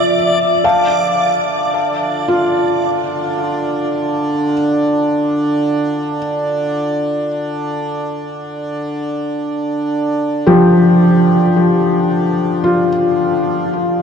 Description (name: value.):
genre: ambient.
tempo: free time.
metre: none.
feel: none.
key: D minor.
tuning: A4 = 440 Hz.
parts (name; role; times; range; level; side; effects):
felt-muted upright piano; arpeggios; 0.0-14.0 s; F3 to A5; -14 LUFS; left 1 dB; ping-pong delay, shimmer reverb.
hand-pumped harmonium; drone; 0.0-14.0 s; D3 to D4; -19 LUFS; right 1 dB; none.
backwards swelling texture; texture; 0.0-0.7 s; D5; -21 LUFS; right 1 dB; built-in reverb, shimmer reverb.
room: wet huge ambient reverb, RT60 8.3 s.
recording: cassette tape.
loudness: -13 LUFS.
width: side -7 dB against mid.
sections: 0.6-14.0 A section.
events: none.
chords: 0.0 Dm.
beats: free time.